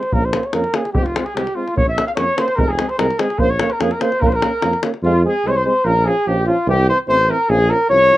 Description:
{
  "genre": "balkan folk, Balkan brass band",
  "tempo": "147 BPM",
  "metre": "2/4",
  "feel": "straight",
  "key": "Bb dorian sharp4",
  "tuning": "A4 = 435 Hz",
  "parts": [
    { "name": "mellow flugelhorn", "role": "melody", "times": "0.0-8.2 s", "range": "F4 to F5", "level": "-18 LUFS", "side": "equal", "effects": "none" },
    { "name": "davul", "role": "percussion", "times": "0.0-5.0 s", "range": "none", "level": "-21 LUFS", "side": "left 1 dB", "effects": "none" },
    { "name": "warm euphonium", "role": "accompaniment", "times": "0.1-8.2 s", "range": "C4 to Db4", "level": "-28 LUFS", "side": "left 3 dB", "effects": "none" },
    { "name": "warm euphonium", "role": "accompaniment", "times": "0.1-8.2 s", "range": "E3 to Bb3", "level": "-24 LUFS", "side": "right 4 dB", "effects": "none" },
    { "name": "warm tuba", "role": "bass", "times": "0.1-8.1 s", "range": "F1 to F2", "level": "-21 LUFS", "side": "equal", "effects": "none" },
    { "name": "clear trumpet", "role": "second line", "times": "0.9-8.2 s", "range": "F4 to F5", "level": "-21 LUFS", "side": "left 1 dB", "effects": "none" }
  ],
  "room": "light reverb",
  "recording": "rough home demo mix",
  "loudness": "-15 LUFS",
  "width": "side -16 dB against mid",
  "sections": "0.0-5.0 A section; 5.0-8.2 B section",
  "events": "none",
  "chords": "0.1 Bbm; 0.9 Fm; 1.8 Bbm; 2.6 Fm; 3.4 Bbm; 5.0 Fm; 5.9 Bbm; 6.7 C; 7.5 Bbm",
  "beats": "| 0.13 0.54 | 0.95 1.36 | 1.76 2.17 | 2.58 2.99 | 3.40 3.81 | 4.22 4.63 | 5.04 5.44 | 5.85 6.26 | 6.67 7.08 | 7.49 7.89"
}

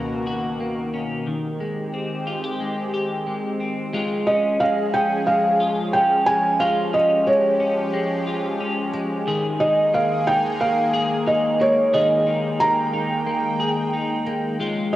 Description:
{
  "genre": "dream pop",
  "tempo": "90 BPM",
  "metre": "4/4",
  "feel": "straight",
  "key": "Db lydian",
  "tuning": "A4 = 439 Hz",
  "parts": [
    { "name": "lush unison pad", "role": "sustained chords", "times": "0.0-15.0 s", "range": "Db2 to G5", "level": "-27 LUFS", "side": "equal", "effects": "chorus" },
    { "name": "clean electric guitar", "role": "arpeggios", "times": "0.0-15.0 s", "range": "Eb3 to Ab4", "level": "-25 LUFS", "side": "left 2 dB", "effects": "analog chorus, tape echo" },
    { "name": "felt-muted upright piano", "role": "melody", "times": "4.3-15.0 s", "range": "Db5 to Bb5", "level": "-19 LUFS", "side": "right 1 dB", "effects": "cassette tape, tape echo" }
  ],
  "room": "wet spring reverb, RT60 1.9 s, studio reverb",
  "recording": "home recording on cassette",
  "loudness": "-19 LUFS",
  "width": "side -14 dB against mid",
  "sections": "0.0-3.9 A section; 3.9-15.0 B section",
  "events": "none",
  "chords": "0.0 Cbmaj7/Db; 1.3 Abmaj7; 3.9 Db; 9.3 Ebsus4",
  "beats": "0.60 | 1.27 1.94 2.60 3.27 | 3.94 4.60 5.27 5.93 | 6.60 7.27 7.93 8.60 | 9.27 9.94 10.60 11.27 | 11.94 12.60 13.27 13.94 | 14.60"
}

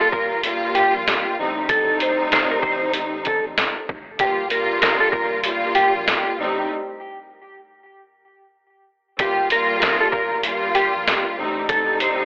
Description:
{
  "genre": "hip hop, boom-bap hip-hop",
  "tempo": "96 BPM",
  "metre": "4/4",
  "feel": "swing 61% on 16ths",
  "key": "G minor",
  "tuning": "A4 = 439 Hz",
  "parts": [
    { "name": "mellow electric guitar", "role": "melody", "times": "0.0-12.2 s", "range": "G4 to C5", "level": "-20 LUFS", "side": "equal", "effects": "analog chorus, high-pass filter, low-pass filter, tape echo" },
    { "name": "warm studio string section", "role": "accompaniment", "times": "0.0-12.2 s", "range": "G2 to F4", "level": "-22 LUFS", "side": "equal", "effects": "high-pass filter, low-pass filter" },
    { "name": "soft dub sub bass", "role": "bass", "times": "0.1-11.9 s", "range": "F1 to Bb1", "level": "-45 LUFS", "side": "equal", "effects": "transformer saturation" },
    { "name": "trip hop sampler-style drum kit", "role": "drums", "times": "0.1-12.2 s", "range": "hi-hat, kick drum, snare drum", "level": "-22 LUFS", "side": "equal", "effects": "none" }
  ],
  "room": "light reverb",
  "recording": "dry, gritty hardware recording, telephone sound",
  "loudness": "-17 LUFS",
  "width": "side -27 dB against mid",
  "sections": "0.0-12.2 A section",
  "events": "break 6.7-9.2",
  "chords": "0.0 Gm7; 1.4 Am7b5; 4.2 Gm7; 6.4 Am7b5; 9.2 Gm7; 11.4 Am7b5",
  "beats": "0.45 1.07 | 1.70 2.32 2.95 3.57 | 4.20 4.82 5.45 6.07 | 6.70 7.32 7.95 8.57 | 9.20 9.82 10.45 11.07 | 11.70"
}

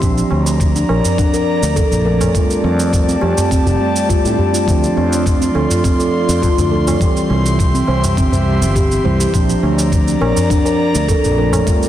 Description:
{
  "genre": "organic downtempo",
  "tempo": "103 BPM",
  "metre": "4/4",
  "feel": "straight",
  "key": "unclear",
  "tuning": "A4 = 440 Hz",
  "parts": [
    { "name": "mellow tine electric piano", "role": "accompaniment", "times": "0.0-11.9 s", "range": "E3 to G4", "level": "-20 LUFS", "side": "right 3 dB", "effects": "medium stereo tremolo, sidechain pumping, digital delay" },
    { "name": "airy breathy pad", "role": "sustained chords", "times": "0.0-11.9 s", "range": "F4 to C6", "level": "-21 LUFS", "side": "left 1 dB", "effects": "chorus, sidechain pumping" },
    { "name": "fretless electric bass", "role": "bass", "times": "0.0-11.6 s", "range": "F1 to A2", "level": "-17 LUFS", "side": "equal", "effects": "none" },
    { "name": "cabasa", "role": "drums", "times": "0.0-11.9 s", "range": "none", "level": "-26 LUFS", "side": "right 4 dB", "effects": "studio reverb" },
    { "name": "electronic kick drum", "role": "drums", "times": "0.0-11.8 s", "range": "none", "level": "-17 LUFS", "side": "equal", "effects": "studio reverb" },
    { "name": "tabla", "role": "percussion", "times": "0.3-11.8 s", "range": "none", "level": "-23 LUFS", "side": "equal", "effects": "none" },
    { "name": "steel tongue drum", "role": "arpeggios", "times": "0.8-11.7 s", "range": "C4 to C5", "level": "-19 LUFS", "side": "left 2 dB", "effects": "vintage 12-bit sampler grit, digital delay" }
  ],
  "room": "light reverb, digital ambience",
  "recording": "dense, heavily limited modern master",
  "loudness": "-12 LUFS",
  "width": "side -12 dB against mid",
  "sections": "0.0-11.9 A section",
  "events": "none",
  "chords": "0.0 Bbmaj7; 2.3 F69; 4.7 Dm7; 7.0 C; 9.3 Bbmaj7",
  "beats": "| 0.02 0.60 1.18 1.77 | 2.35 2.93 3.51 4.10 | 4.68 5.26 5.84 6.43 | 7.01 7.59 8.17 8.76 | 9.34 9.92 10.50 11.09 | 11.67"
}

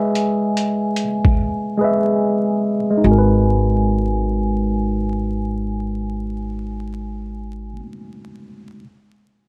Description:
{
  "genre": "lo-fi hip hop",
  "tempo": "73 BPM",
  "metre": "4/4",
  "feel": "swing 62% on 16ths",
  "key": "G# minor",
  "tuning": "A4 = 440 Hz",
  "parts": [
    { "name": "vibraphone with soft mallets", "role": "melody", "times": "0.0-7.8 s", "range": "G#5", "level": "-32 LUFS", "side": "equal", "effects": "low-pass filter, analog delay" },
    { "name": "mellow tine electric piano", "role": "accompaniment", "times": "0.0-8.8 s", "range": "G#3 to E5", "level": "-22 LUFS", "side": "equal", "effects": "cassette tape, low-pass filter" },
    { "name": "trip hop sampler-style drum kit", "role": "drums", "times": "0.2-1.4 s", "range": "hi-hat, kick drum", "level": "-20 LUFS", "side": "equal", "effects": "overdrive, vintage 12-bit sampler grit" },
    { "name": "upright bass", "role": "bass", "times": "3.0-7.8 s", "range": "G#1", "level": "-23 LUFS", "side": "equal", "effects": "none" }
  ],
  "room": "light reverb, small room ambience",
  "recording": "dark, warm production, vinyl crackle",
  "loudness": "-19 LUFS",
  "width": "mono",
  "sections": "0.0-3.0 A section; 3.0-6.3 B section",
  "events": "break 0.0-3.0; filter sweep 0.0-3.0; drums muted 1.4-3.0",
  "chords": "0.0 Emaj7/G#; 3.0 G#m9",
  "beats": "0.57 1.39 2.21 | 3.03 3.86 4.68 5.50"
}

